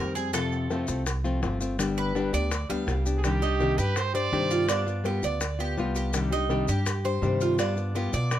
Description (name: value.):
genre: latin, Cuban son and guajira.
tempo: 166 BPM.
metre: 4/4.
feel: straight.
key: C minor.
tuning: A4 = 439 Hz.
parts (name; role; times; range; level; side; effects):
nylon-string guitar; accompaniment; 0.0-8.4 s; C3 to G4; -29 LUFS; left 3 dB; none.
Cuban tres; arpeggios; 0.0-8.4 s; D4 to F5; -30 LUFS; right 3 dB; none.
upright bass; bass; 0.0-8.4 s; G1 to B2; -29 LUFS; equal; none.
maracas; percussion; 0.2-8.4 s; none; -40 LUFS; left 5 dB; none.
bongos; percussion; 0.3-8.4 s; none; -35 LUFS; left 4 dB; none.
brilliant trumpet; second line; 3.2-4.8 s; G4 to D5; -30 LUFS; right 5 dB; slapback echo.
room: light reverb.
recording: none.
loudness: -24 LUFS.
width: side -11 dB against mid.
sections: 0.0-3.2 A section; 3.2-8.4 B section.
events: Cuban tres solo 0.0-3.2.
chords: 0.3 F; 1.8 G; 3.2 Cmadd9; 4.7 G7; 6.1 Cmadd9; 7.6 G7.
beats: | 0.34 0.71 1.07 1.43 | 1.79 2.16 2.52 2.88 | 3.24 3.61 3.97 4.33 | 4.69 5.06 5.42 5.78 | 6.14 6.51 6.87 7.23 | 7.59 7.96 8.32.